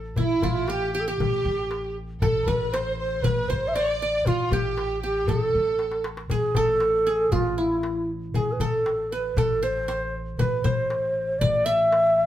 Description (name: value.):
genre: Arabic maqam ensemble.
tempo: 117 BPM.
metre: 4/4.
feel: straight.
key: A maqam bayati, A maqam nahawand from 6.3 s.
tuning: A4 = 444 Hz.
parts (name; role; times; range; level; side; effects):
qanun; second line; 0.0-12.3 s; E4 to E5; -32 LUFS; right 2 dB; none.
upright bass; bass; 0.0-12.3 s; A1; -30 LUFS; equal; none.
breathy mellow low ney; melody; 0.2-12.3 s; E4 to E5; -24 LUFS; right 1 dB; none.
rich studio violin section; second line; 0.2-6.1 s; E4 to D5; -33 LUFS; right 1 dB; none.
darbuka; percussion; 0.2-12.0 s; none; -28 LUFS; left 4 dB; none.
room: moderate large studio reverb, RT60 0.9 s.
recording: band playing live in one room.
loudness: -22 LUFS.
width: side -12 dB against mid.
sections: 0.0-6.3 A section; 6.3-12.3 B section.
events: drum fill 5.8-6.3.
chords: none.